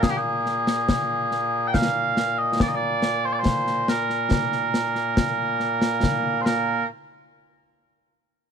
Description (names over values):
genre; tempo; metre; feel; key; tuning
scottish traditional, Scottish pipe music; 70 BPM; 3/4; straight; Bb mixolydian; A4 = 438 Hz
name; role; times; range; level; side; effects
mellow small bagpipes; melody; 0.0-6.9 s; Bb2 to G5; -22 LUFS; right 1 dB; none
concert snare drum and concert bass drum; drums; 0.0-6.9 s; none; -24 LUFS; left 2 dB; none
room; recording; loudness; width
little or no reverb; close, detailed microphones; -21 LUFS; side -7 dB against mid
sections
0.0-6.9 A section; 6.9-8.5 B section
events
none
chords
none